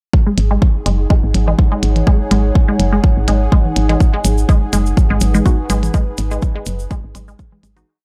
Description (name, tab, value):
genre	minimal techno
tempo	124 BPM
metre	4/4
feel	swing 55% on 16ths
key	G# minor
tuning	A4 = 440 Hz
part	electronic kick drum	drums	0.1-7.5 s	none	-15 LUFS	equal	none
part	congas	percussion	0.1-7.9 s	none	-27 LUFS	equal	none
part	bubbling stepped-filter texture	texture	0.1-7.9 s	G#4	-34 LUFS	equal	chorus, built-in reverb, sidechain pumping
part	warbly tape-like pad	texture	0.8-7.9 s	D#4 to F#5	-27 LUFS	equal	chorus, built-in reverb, sidechain pumping
part	resonant blip pluck	riff	0.3-7.8 s	G#3 to D#4	-24 LUFS	equal	phaser, sidechain pumping, tape echo
part	woody FM bass	bass	0.4-7.8 s	F#1 to G#1	-18 LUFS	equal	sidechain pumping
part	electronic hi-hat	drums	0.4-7.9 s	none	-28 LUFS	equal	none
part	cabasa	percussion	4.0-7.9 s	none	-32 LUFS	equal	none
part	wavetable chord stab	stabs	5.5-7.9 s	G#3 to F#4	-28 LUFS	equal	dub echo
room	digital ambience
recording	dark, warm production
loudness	-14 LUFS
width	mono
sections	0.1-7.9 groove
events	fade-out 5.3-7.9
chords	0.1 G#m7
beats	| 0.13 0.62 1.10 1.58 | 2.07 2.55 3.04 3.52 | 4.00 4.49 4.97 5.46 | 5.94 6.42 6.91 7.39